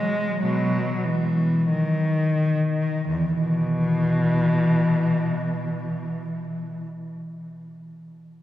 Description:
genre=classical, baroque-style suite movement for unaccompanied cello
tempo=41-51 BPM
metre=4/4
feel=rubato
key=E major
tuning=A4 = 440 Hz
part: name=rich cello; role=solo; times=0.0-6.9 s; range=E2 to G#3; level=-21 LUFS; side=left 1 dB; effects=none
room=wet cathedral reverb, RT60 4.4 s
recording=worn, warbling old tape, cassette tape, warbly pitch drift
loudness=-20 LUFS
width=side -13 dB against mid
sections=0.0-3.1 A section; 3.1-8.4 B section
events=slowing down 0.0-3.1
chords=none

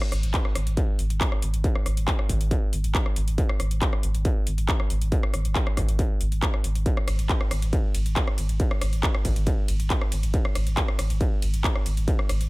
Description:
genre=driving peak-time techno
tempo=138 BPM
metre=4/4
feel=straight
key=unclear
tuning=A4 = 439 Hz
part: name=techno drum kit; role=drums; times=0.0-12.5 s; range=handclaps, hi-hat, ride cymbal, rim click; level=-31 LUFS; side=left 1 dB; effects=none
part: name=warm sub bass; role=bass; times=0.1-12.5 s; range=G#1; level=-26 LUFS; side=equal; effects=overdrive, sidechain pumping, low-pass filter
part: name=electronic kick drum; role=drums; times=0.3-12.2 s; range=none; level=-24 LUFS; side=equal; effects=distortion
room=digital ambience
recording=none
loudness=-22 LUFS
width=side -22 dB against mid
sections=0.0-12.5 A section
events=none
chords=none

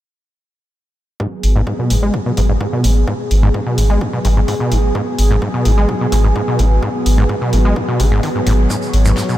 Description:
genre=acid house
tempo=128 BPM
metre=4/4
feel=straight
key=G# minor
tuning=A4 = 439 Hz
part: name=warm analog pad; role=sustained chords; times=1.2-9.4 s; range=F#3 to C#5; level=-20 LUFS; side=equal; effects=chorus, sidechain pumping
part: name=overdriven acid bass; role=riff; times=1.2-9.4 s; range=F#2 to G#3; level=-18 LUFS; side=equal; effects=distortion, sidechain pumping, diffuse ambient delay
part: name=electronic kick drum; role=drums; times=1.2-9.3 s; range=none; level=-29 LUFS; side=equal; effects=high-pass filter on kick, high-pass filter on room
part: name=round analog bass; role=bass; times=1.4-9.1 s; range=G#1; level=-13 LUFS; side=equal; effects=sidechain pumping
part: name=electronic hi-hat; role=drums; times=1.4-9.0 s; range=none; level=-29 LUFS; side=left 1 dB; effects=none
part: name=warm soul drum kit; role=drums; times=8.7-9.3 s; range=hi-hat, snare drum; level=-30 LUFS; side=left 3 dB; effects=sidechain pumping on hats, high-pass filter on hats, high-pass filter on snare, high-pass filter on room
part: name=tube shaker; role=percussion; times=8.7-9.4 s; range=none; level=-28 LUFS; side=right 4 dB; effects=none
room=light reverb, small room reverb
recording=none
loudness=-13 LUFS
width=side -14 dB against mid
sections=1.2-9.4 A section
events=filter sweep on acid bass 1.2-9.4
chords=1.2 G#m7

